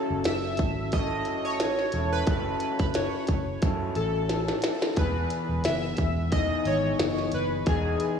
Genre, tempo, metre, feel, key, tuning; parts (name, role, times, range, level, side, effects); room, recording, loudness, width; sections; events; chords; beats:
indie pop, bedroom pop; 89 BPM; 4/4; swing 55% on 16ths; A4 = 440 Hz
chorused retro synth keys; melody; 0.0-8.2 s; G#4 to E5; -30 LUFS; equal; lush chorus, tape echo
electric guitar through a small old amp; accompaniment; 0.0-8.2 s; E3 to A4; -30 LUFS; left 3 dB; wide subtle chorus, warbly pitch drift
vintage muted fingered electric bass; bass; 0.1-7.9 s; E1 to F#2; -31 LUFS; right 1 dB
minimal click drum kit; drums; 0.2-8.2 s; hi-hat, kick drum, snare drum; -28 LUFS; equal; overdrive
moderate lush hall reverb, RT60 2.6 s; dreamy mix soaked in reverb, studio reverb; -24 LUFS; side -7 dB against mid
0.0-8.2 A section
drum fill 4.3-5.0
0.0 F#m7; 5.0 Emaj7
0.26 0.93 1.60 | 2.28 2.95 3.62 4.30 | 4.97 5.65 6.32 6.99 | 7.67